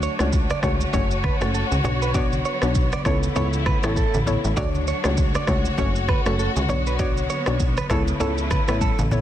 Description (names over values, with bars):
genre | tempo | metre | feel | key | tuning
afrobeats | 99 BPM | 4/4 | swing 58% on 16ths | B minor | A4 = 440 Hz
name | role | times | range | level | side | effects
soft round pluck | accompaniment | 0.0-9.2 s | A3 to C#5 | -27 LUFS | left 3 dB | chorus
warm studio string section | sustained chords | 0.0-9.2 s | C#3 to C#5 | -29 LUFS | left 1 dB | none
direct-recorded clean electric guitar | riff | 0.0-9.0 s | A4 to D5 | -29 LUFS | right 7 dB | analog chorus, digital delay
plucky analog bass | bass | 0.0-9.2 s | F#1 to D2 | -24 LUFS | equal | none
afro-pop drum kit | drums | 0.0-9.2 s | kick drum, rim click, shaker, toms | -24 LUFS | equal | vintage 12-bit sampler grit
congas | percussion | 0.5-9.2 s | none | -31 LUFS | right 1 dB | none
room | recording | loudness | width
light reverb | dense, heavily limited modern master | -19 LUFS | side -11 dB against mid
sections
0.0-9.2 A section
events
drum fill 8.8-9.2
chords
0.0 Dmaj7; 0.9 F#m; 1.8 Bmadd9; 3.1 Aadd9/C#; 4.6 Dmaj7; 5.8 F#m; 6.7 Bmadd9; 7.9 Aadd9/C#